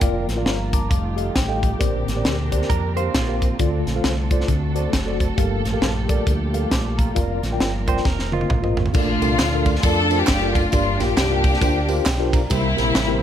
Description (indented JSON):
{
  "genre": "uptempo gospel",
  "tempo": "134 BPM",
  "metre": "4/4",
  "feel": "swing 61% on 8ths",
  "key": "Bb major",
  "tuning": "A4 = 439 Hz",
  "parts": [
    { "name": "mellow tine electric piano", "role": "accompaniment", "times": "0.0-13.2 s", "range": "G2 to D6", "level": "-25 LUFS", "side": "left 2 dB", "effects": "medium stereo tremolo" },
    { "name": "dark symphonic string section", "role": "sustained chords", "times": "0.0-8.9 s", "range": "G3 to Bb4", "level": "-33 LUFS", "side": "right 1 dB", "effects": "none" },
    { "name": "percussive tonewheel organ", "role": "sustained chords", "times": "0.0-13.2 s", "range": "D3 to C6", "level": "-30 LUFS", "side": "right 2 dB", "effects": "slow rotary speaker, chorus vibrato" },
    { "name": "deep dub fingered electric bass", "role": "bass", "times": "0.0-13.2 s", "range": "F1 to F2", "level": "-24 LUFS", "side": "equal", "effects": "none" },
    { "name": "tight funk drum kit", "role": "drums", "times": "0.0-13.1 s", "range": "crash cymbal, hi-hat, kick drum, ride cymbal, snare drum, toms", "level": "-22 LUFS", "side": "equal", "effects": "none" },
    { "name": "semi-hollow electric guitar", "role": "second line", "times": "2.7-3.6, 7.9-8.9 s", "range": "F4 to C5", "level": "-29 LUFS", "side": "right 11 dB", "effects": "none" },
    { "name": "tambourine and handclaps", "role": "percussion", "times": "8.9-13.1 s", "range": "none", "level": "-34 LUFS", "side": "right 3 dB", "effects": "none" },
    { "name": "warm studio string section", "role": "melody", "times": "9.0-13.2 s", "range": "G3 to A4", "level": "-21 LUFS", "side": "left 1 dB", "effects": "slapback echo" }
  ],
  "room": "light reverb",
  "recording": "none",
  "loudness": "-18 LUFS",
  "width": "side -10 dB against mid",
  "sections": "0.0-8.9 A section; 8.9-13.2 B section",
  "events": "tine electric piano fill 0.5-1.8, 11.6-12.5; drum fill 8.1-8.9",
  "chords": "0.0 Bb/F; 0.9 F9; 1.8 Bb69; 3.6 Dm7; 4.5 D7; 5.4 Gm9; 7.2 Bb/F; 8.1 F7sus4; 8.9 Bbmaj7; 10.7 Gm7; 12.5 C7"
}